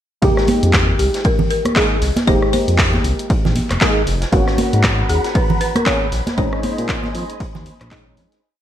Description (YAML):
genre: deep house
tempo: 117 BPM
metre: 4/4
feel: swing 58% on 16ths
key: F minor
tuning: A4 = 442 Hz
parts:
  - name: percussive organ stab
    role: stabs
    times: 0.2-8.4 s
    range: Ab3 to Ab4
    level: -21 LUFS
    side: equal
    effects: ensemble chorus, cassette tape, sidechain pumping
  - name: smooth synth bass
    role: bass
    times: 0.2-8.3 s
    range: F1 to Bb2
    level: -19 LUFS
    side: equal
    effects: sidechain pumping
  - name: electronic kick drum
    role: drums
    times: 0.2-8.0 s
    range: none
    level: -19 LUFS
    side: equal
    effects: vintage 12-bit sampler grit
  - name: punchy analog drum machine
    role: drums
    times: 0.2-8.4 s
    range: handclaps, hi-hat, rim click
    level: -22 LUFS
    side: equal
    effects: vintage 12-bit sampler grit, gated reverb
  - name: raw garage drum kit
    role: drums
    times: 0.2-8.4 s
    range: hi-hat, snare drum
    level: -31 LUFS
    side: left 1 dB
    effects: high-pass filter on hats, vintage 12-bit sampler grit, high-pass filter on snare, high-pass filter on room, gated reverb
  - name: congas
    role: percussion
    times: 0.5-7.8 s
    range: none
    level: -22 LUFS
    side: right 2 dB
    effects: none
  - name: folk marimba with hard mallets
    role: melody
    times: 1.0-8.1 s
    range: G4 to Db5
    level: -24 LUFS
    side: left 2 dB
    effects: ping-pong delay
  - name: soft string machine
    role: sustained chords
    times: 4.3-8.4 s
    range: C5 to Cb6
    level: -28 LUFS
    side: left 1 dB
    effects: phaser, ensemble chorus, sidechain pumping
room: light reverb, studio reverb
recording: bright 1980s-style digital production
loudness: -14 LUFS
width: side -11 dB against mid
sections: 0.2-8.4 groove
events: fade-out 5.7-8.4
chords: 0.2 Fm11; 4.3 Abm11; 6.1 Bbm11